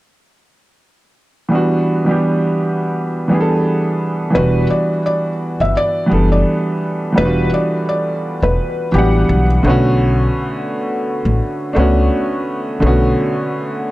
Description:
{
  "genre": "hip hop",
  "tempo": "85 BPM",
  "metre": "4/4",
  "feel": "swing 55% on 16ths",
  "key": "E dorian",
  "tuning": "A4 = 441 Hz",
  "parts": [
    { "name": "warm upright piano", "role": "accompaniment", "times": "1.5-13.9 s", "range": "D3 to F#5", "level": "-16 LUFS", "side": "right 1 dB", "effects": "none" },
    { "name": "felt-muted upright piano", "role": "melody", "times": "4.3-9.5 s", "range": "G4 to E5", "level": "-19 LUFS", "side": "equal", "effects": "tape echo" },
    { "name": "upright bass", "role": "bass", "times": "4.4-13.1 s", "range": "E1 to C#2", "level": "-16 LUFS", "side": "equal", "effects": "none" }
  ],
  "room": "moderate studio reverb, RT60 0.6 s",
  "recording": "none",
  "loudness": "-14 LUFS",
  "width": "side -17 dB against mid",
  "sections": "1.5-4.3 A section; 4.3-13.9 B section",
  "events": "none",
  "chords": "1.5 Em9; 9.6 Bm9"
}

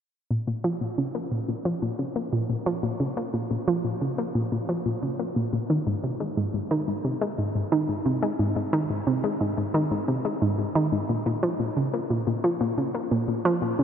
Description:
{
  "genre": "ambient, sequencer-driven space music",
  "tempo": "89 BPM",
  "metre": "4/4",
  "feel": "straight",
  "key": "Bb minor",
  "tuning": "A4 = 440 Hz",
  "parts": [
    { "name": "analog pluck", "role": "solo", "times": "0.3-13.8 s", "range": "Ab2 to Bb3", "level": "-24 LUFS", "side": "equal", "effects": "chorus, analog delay" }
  ],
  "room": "wet huge ambient reverb, RT60 8.3 s",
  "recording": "in a vast, echoing space",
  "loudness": "-24 LUFS",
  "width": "side -8 dB against mid",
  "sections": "0.3-11.1 A section; 11.1-13.8 B section",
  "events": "none",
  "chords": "none"
}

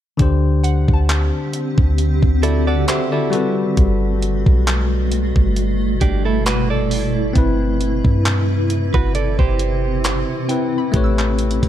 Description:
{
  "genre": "contemporary R&B",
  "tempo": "67 BPM",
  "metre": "4/4",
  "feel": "swing 54% on 16ths",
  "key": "G major",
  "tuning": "A4 = 438 Hz",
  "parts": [
    { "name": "bell-like tine electric piano", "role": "accompaniment", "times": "0.2-11.7 s", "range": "D3 to F#5", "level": "-22 LUFS", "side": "left 4 dB", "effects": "none" },
    { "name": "granular cloud pad", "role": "sustained chords", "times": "1.2-11.7 s", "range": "B2 to B4", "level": "-23 LUFS", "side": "equal", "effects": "built-in reverb" },
    { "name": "clean 808-style bass", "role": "bass", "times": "0.2-11.7 s", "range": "G1 to G2", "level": "-18 LUFS", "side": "equal", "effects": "none" },
    { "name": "crisp 8-bit digital drum machine", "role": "drums", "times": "0.2-11.7 s", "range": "handclaps, hi-hat, kick drum", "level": "-18 LUFS", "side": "equal", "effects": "none" },
    { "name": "glassy wavetable pluck", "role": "texture", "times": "0.6-1.8, 10.5-11.7 s", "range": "F#5 to E6", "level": "-32 LUFS", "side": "right 2 dB", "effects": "chorus, tape echo" },
    { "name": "direct-recorded clean electric guitar", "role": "arpeggios", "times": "2.4-10.7 s", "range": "D4 to D5", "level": "-24 LUFS", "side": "right 8 dB", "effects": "tape echo" }
  ],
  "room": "little or no reverb",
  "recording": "dark, warm production",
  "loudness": "-15 LUFS",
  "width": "side -11 dB against mid",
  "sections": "0.2-11.7 A section",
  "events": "none",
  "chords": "0.2 D7sus4; 3.3 Gmaj9; 7.4 Cmaj7/G; 10.9 A9"
}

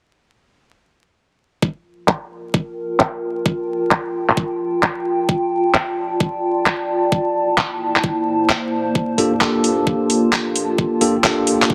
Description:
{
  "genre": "UK garage, two-step garage",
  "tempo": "131 BPM",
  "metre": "4/4",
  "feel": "swing 67% on 16ths",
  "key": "G dorian",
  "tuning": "A4 = 440 Hz",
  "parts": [
    { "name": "electronic kick drum", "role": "drums", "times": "1.6-11.7 s", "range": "none", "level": "-22 LUFS", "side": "equal", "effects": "high-pass filter on kick" },
    { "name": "warbly tape-like pad", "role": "texture", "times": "2.4-11.7 s", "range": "Bb3 to A5", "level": "-23 LUFS", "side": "equal", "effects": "chorus, built-in reverb, sidechain pumping" },
    { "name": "garage drum kit", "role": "drums", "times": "2.1-11.7 s", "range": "handclaps, hi-hat", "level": "-20 LUFS", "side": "equal", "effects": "soft clipping on snare, low-pass filter on snare, low-pass filter on hats" },
    { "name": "tine electric piano", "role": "stabs", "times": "9.2-11.7 s", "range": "Bb3 to A4", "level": "-20 LUFS", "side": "equal", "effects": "delay" }
  ],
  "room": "moderate plate reverb, RT60 1.8 s",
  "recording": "dense, heavily limited modern master, vinyl crackle",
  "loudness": "-19 LUFS",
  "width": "mono",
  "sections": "1.6-11.7 A section",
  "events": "filter sweep on drum 1.6-11.7",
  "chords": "1.6 Gm9; 5.1 F69; 7.1 C13; 9.0 Gm9"
}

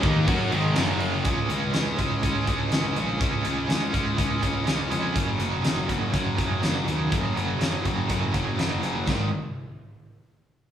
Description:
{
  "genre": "hard rock",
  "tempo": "122 BPM",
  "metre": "4/4",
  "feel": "straight",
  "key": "unclear",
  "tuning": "A4 = 440 Hz",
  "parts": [
    { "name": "phased analog pad", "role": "sustained chords", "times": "0.2-1.2 s", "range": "Ab3 to Bb4", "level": "-42 LUFS", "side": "equal", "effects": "none" },
    { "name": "cranked stack guitar", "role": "riff", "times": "0.0-9.3 s", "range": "Gb2 to Gb4", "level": "-28 LUFS", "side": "left 5 dB", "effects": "overdrive" },
    { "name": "cranked stack guitar", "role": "riff", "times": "0.0-9.3 s", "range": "Gb2 to Gb4", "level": "-29 LUFS", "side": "right 5 dB", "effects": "overdrive, tremolo" },
    { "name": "distorted electric guitar", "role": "riff", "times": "0.0-1.2 s", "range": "Gb2 to Gb4", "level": "-28 LUFS", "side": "equal", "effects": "distortion" },
    { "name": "fuzz picked electric bass", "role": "bass", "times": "0.0-9.3 s", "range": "Gb1 to Gb2", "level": "-30 LUFS", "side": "equal", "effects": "overdrive" },
    { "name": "big rock drum kit", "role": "drums", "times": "0.0-9.2 s", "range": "crash cymbal, hi-hat, kick drum, snare drum", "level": "-27 LUFS", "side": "equal", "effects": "none" }
  ],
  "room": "moderate large studio reverb, RT60 1.1 s",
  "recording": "band playing live in one room, studio reverb",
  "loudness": "-22 LUFS",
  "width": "side -10 dB against mid",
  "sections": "0.0-1.2 A section; 1.2-9.1 B section; 9.1-10.7 C section",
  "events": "none",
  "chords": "0.0 Ab5; 0.8 Gb5; 1.2 Db5; 5.2 Gb5; 9.1 Ab5"
}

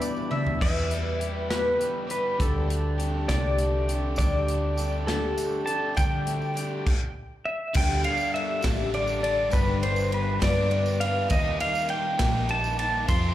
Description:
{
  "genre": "folk rock and heartland rock",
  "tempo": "67 BPM (dotted quarters)",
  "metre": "6/8",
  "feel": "straight",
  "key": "unclear",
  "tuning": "A4 = 438 Hz",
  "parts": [
    { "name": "mandolin", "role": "second line", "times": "0.0-0.6 s", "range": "D5 to E5", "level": "-34 LUFS", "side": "left 1 dB", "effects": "slapback echo" },
    { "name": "picked twelve-string acoustic guitar", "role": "accompaniment", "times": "0.0-13.3 s", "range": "G2 to B4", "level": "-32 LUFS", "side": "left 2 dB", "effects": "slapback echo" },
    { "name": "mellow accordion", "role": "sustained chords", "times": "0.0-6.9 s", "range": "A3 to B4", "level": "-39 LUFS", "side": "right 1 dB", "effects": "none" },
    { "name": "crunchy overdriven guitar", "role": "riff", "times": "0.0-13.3 s", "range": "E2 to A4", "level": "-33 LUFS", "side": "equal", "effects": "spring reverb, slapback echo" },
    { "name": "natural country drum kit", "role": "drums", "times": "0.0-13.2 s", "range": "crash cymbal, hi-hat, kick drum, ride cymbal, snare drum, toms", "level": "-29 LUFS", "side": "equal", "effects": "none" },
    { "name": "tambourine", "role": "percussion", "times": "0.0-0.2, 4.2-13.3 s", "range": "none", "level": "-45 LUFS", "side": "right 3 dB", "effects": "none" },
    { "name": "pedal steel guitar", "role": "melody", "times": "0.6-13.3 s", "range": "A4 to C6", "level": "-28 LUFS", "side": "equal", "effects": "slapback echo, analog delay" },
    { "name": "hollow-body short-scale fingered electric bass", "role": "bass", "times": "0.6-13.3 s", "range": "G1 to D3", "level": "-28 LUFS", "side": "equal", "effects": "none" }
  ],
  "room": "light reverb, small room ambience",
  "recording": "live gig heard through the venue's PA, club reverb",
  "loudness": "-23 LUFS",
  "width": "side -13 dB against mid",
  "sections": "0.6-7.8 A section; 7.8-13.3 B section",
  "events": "drum fill 0.3",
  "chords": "0.0 Em7; 0.6 Em; 2.4 Dsus4; 9.5 G; 11.3 Eb"
}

